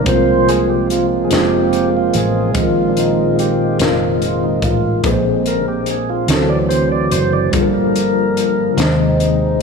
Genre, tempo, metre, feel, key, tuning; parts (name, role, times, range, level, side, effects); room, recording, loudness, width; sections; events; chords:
slow gospel; 48 BPM (dotted quarters); 6/8; straight; A4 = 440 Hz
mellow tine electric piano; accompaniment; 0.0-9.6 s; G2 to C5; -18 LUFS; left 3 dB; medium stereo tremolo
mellow French horn section; sustained chords; 0.0-9.6 s; C3 to F4; -25 LUFS; left 4 dB
tonewheel organ; sustained chords; 0.0-9.6 s; D3 to D5; -17 LUFS; right 4 dB; slow rotary speaker
fingered electric bass; bass; 0.0-9.6 s; F1 to Eb2; -21 LUFS; equal
crisp fusion drum kit; drums; 0.1-9.4 s; hi-hat, kick drum, snare drum; -22 LUFS; left 1 dB
light reverb; small room ambience; -13 LUFS; side -5 dB against mid
0.0-9.6 A section
tonewheel organ solo 0.0-9.6
0.1 Ab69/C; 2.6 Bb7sus4; 5.0 Bb9; 6.3 D7; 7.5 Gm7; 8.8 Ab/Eb